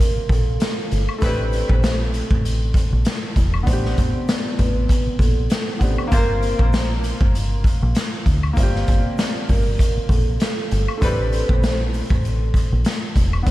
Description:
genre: hip hop, boom-bap hip-hop.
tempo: 98 BPM.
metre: 4/4.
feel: swing 56% on 16ths.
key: unclear.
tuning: A4 = 439 Hz.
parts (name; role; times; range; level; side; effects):
vibraphone with soft mallets; melody; 0.0-13.5 s; A4 to D5; -29 LUFS; right 2 dB; high-pass filter, low-pass filter, tape echo.
warm baby grand piano; accompaniment; 0.0-13.5 s; A3 to Bb4; -28 LUFS; equal; cassette tape, high-pass filter, low-pass filter.
raw garage drum kit; drums; 0.0-13.5 s; hi-hat, kick drum, snare drum; -19 LUFS; equal; none.
tube shaker and woodblock; percussion; 0.0-13.5 s; none; -36 LUFS; left 6 dB; none.
deep dub fingered electric bass; bass; 0.2-13.5 s; E1 to D2; -21 LUFS; equal; none.
clear horn section; stabs; 1.2-1.4, 6.1-6.3, 11.0-11.2 s; G3 to C5; -32 LUFS; left 2 dB; high-pass filter, low-pass filter, tape echo.
room: small room ambience.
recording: vinyl crackle.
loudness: -17 LUFS.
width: side -16 dB against mid.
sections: 0.0-13.5 A section.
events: none.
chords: 0.0 Gm11; 1.2 Am11; 6.1 Gm11; 11.0 Am11.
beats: 0.00 0.61 | 1.22 1.83 2.45 3.06 | 3.67 4.28 4.90 5.51 | 6.12 6.73 7.34 7.96 | 8.57 9.18 9.79 10.41 | 11.02 11.63 12.24 12.86 | 13.47.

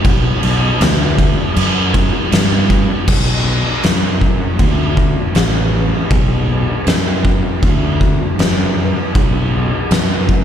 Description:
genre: stoner and doom metal.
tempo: 79 BPM.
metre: 4/4.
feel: straight.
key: B minor.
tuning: A4 = 440 Hz.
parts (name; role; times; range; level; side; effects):
fuzz fingered electric bass; bass; 0.0-10.4 s; A1 to G2; -16 LUFS; equal; overdrive.
oversized low-tuned drum kit; drums; 0.0-10.4 s; crash cymbal, kick drum, snare drum; -14 LUFS; equal; none.
room: little or no reverb.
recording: live gig heard through the venue's PA, recital hall reverb.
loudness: -12 LUFS.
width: side -9 dB against mid.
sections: 0.0-3.1 A section; 3.1-10.4 B section.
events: none.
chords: none.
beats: | 0.05 0.81 1.56 2.32 | 3.08 3.84 4.60 5.36 | 6.12 6.88 7.63 8.39 | 9.15 9.91.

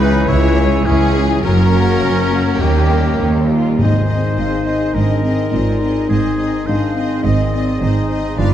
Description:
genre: cinematic, heroic adventure film score.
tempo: 104 BPM.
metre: 4/4.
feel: straight.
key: Ab lydian from 3.8 s.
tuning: A4 = 438 Hz.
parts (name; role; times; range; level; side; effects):
warm symphonic violin section; melody; 0.0-8.5 s; G4 to F5; -25 LUFS; left 4 dB; none.
mellow flute section; second line; 0.0-8.5 s; G4 to F5; -27 LUFS; left 2 dB; none.
rich symphonic violin section; second line; 0.0-8.5 s; A#3 to B4; -27 LUFS; left 3 dB; none.
warm oboe; second line; 0.0-8.5 s; A#3 to Eb5; -26 LUFS; right 1 dB; none.
warm symphonic viola section; accompaniment; 0.0-8.5 s; C#3 to D4; -26 LUFS; right 1 dB; none.
mellow French horn section; sustained chords; 0.0-8.5 s; Eb3 to A#4; -22 LUFS; left 4 dB; none.
concert harp; arpeggios; 0.0-8.5 s; F#2 to C#6; -25 LUFS; left 8 dB; none.
mellow trumpet; stabs; 0.0-8.5 s; G4 to C#5; -28 LUFS; right 2 dB; none.
rich symphonic cello section; bass; 0.0-8.5 s; C#2 to Ab2; -20 LUFS; right 2 dB; none.
rich symphonic double bass section; bass; 0.0-8.5 s; F#1 to D#2; -18 LUFS; right 2 dB; none.
warm clarinet; second line; 3.8-8.5 s; C4 to F4; -23 LUFS; equal; none.
timpani; percussion; 3.8-4.6 s; Ab2; -22 LUFS; left 1 dB; none.
room: wet scoring stage reverb, RT60 1.6 s.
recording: none.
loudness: -13 LUFS.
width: side -10 dB against mid.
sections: 0.0-3.8 A section; 3.8-8.5 B section.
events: none.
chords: 0.0 C#m; 1.4 F#; 2.6 D#7; 3.8 Ab.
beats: 0.29 0.86 | 1.44 2.02 2.61 3.21 | 3.79 4.37 4.95 5.52 | 6.10 6.67 7.24 7.81 | 8.38.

